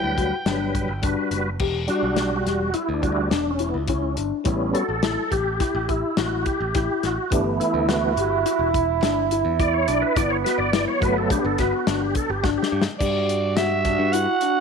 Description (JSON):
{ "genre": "progressive instrumental, band music in an uneven meter", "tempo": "105 BPM", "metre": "5/4", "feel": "straight", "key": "G lydian", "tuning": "A4 = 440 Hz", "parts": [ { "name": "raspy soprano saxophone", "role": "melody", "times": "0.0-1.0, 13.0-14.6 s", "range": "D5 to G5", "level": "-24 LUFS", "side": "right 2 dB", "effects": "none" }, { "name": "tonewheel organ", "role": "accompaniment", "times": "0.0-12.8 s", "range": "E3 to D5", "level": "-24 LUFS", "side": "right 1 dB", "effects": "chorus vibrato, fast rotary speaker" }, { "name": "dark concert grand piano", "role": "arpeggios", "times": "0.0-14.6 s", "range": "G3 to G4", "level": "-27 LUFS", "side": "left 11 dB", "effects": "none" }, { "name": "modern bright picked electric bass", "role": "bass", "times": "0.0-14.3 s", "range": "E1 to G2", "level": "-28 LUFS", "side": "right 1 dB", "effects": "none" }, { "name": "warm soul drum kit", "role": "drums", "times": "0.2-14.5 s", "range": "crash cymbal, hi-hat, kick drum, snare drum", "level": "-26 LUFS", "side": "left 2 dB", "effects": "none" }, { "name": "warm trombone", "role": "second line", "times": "7.3-14.6 s", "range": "B3 to F#4", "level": "-25 LUFS", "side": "right 12 dB", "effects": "slapback echo" }, { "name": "egg shaker", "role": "percussion", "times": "7.3-14.6 s", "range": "none", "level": "-41 LUFS", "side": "left 16 dB", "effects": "none" } ], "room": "moderate echo chamber reverb, RT60 2.3 s", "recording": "1960s-style stereo with parts hard left and right", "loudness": "-20 LUFS", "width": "side -6 dB against mid", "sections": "0.0-1.6 A section; 1.6-13.0 B section; 13.0-14.6 C section", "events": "tonewheel organ solo 1.6-13.0; drum fill 12.4-13.0", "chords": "0.0 Gmaj7; 1.6 Em7; 4.5 A7; 7.3 G69; 10.2 Gmaj7; 13.0 G5", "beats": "0.46 1.03 | 1.61 2.18 2.75 3.32 3.89 | 4.47 5.04 5.61 6.18 6.75 | 7.32 7.89 8.46 9.03 9.60 | 10.17 10.74 11.31 11.87 12.44 | 13.01 13.58 14.14" }